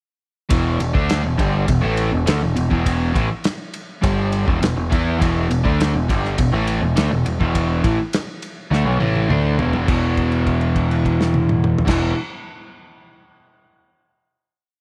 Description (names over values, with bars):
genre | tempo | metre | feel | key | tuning
classic rock | 102 BPM | 4/4 | straight | unclear | A4 = 442 Hz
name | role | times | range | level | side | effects
crunchy overdriven guitar | riff | 0.5-12.1 s | E2 to E4 | -22 LUFS | equal | none
growling picked electric bass | bass | 0.5-12.1 s | E1 to E2 | -24 LUFS | equal | overdrive
damped 70s drum kit | drums | 0.5-12.0 s | crash cymbal, kick drum, ride cymbal, snare drum, toms | -25 LUFS | equal | none
room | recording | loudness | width
light reverb | none | -19 LUFS | mono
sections
0.5-9.9 riff; 9.9-12.2 final chord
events
drum fill 8.7-9.9; held note 9.9-11.9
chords
0.5 E5